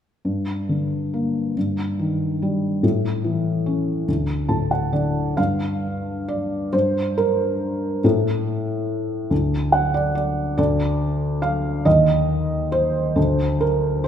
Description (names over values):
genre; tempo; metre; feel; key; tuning
classical, lyrical solo piano; 46 BPM (dotted quarters); 6/8; rubato; G minor; A4 = 440 Hz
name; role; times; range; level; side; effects
felt-muted upright piano; solo; 0.2-14.1 s; D2 to A5; -19 LUFS; equal; none
room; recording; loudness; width
wet recital hall reverb, RT60 1.7 s; minimal, uncompressed stereo recording; -19 LUFS; side -9 dB against mid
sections
0.2-5.4 A section; 5.4-14.1 B section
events
felt piano fill 4.1-5.4, 9.3-10.6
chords
0.2 Gm; 1.6 Eb/G; 2.8 A; 4.1 D5; 5.4 N.C.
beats
| 0.25 1.56 | 2.83 4.08 | 5.39 6.74 | 8.04 9.31 | 10.58 11.86 | 13.17